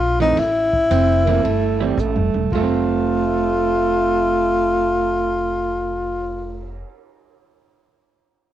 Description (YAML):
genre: jazz, small-group swing and bop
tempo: 112 BPM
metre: 4/4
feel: swing 67% on 8ths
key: F major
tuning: A4 = 441 Hz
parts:
  - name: warm tenor saxophone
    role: melody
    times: 0.0-6.8 s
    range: Eb4 to F4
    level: -19 LUFS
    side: left 2 dB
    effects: cassette tape
  - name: upright bass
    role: bass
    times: 0.0-6.8 s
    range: E1 to Bb1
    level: -24 LUFS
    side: equal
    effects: none
  - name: vintage hollow-body jazz guitar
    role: accompaniment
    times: 0.2-6.9 s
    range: E3 to C4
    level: -24 LUFS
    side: right 8 dB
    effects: none
  - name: open jazz drum kit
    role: drums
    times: 0.2-6.7 s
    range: crash cymbal, cymbal swell, hi-hat, kick drum, ride cymbal, snare drum, toms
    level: -30 LUFS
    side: equal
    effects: cassette tape
  - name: mellow alto saxophone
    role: second line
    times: 0.9-6.8 s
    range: G3 to C4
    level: -24 LUFS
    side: right 9 dB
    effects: none
room: light reverb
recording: home recording on cassette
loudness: -16 LUFS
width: side -12 dB against mid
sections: 0.0-2.5 A section; 2.5-6.8 B section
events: drum fill 2.0-2.5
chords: 0.0 Fmaj7; 2.5 F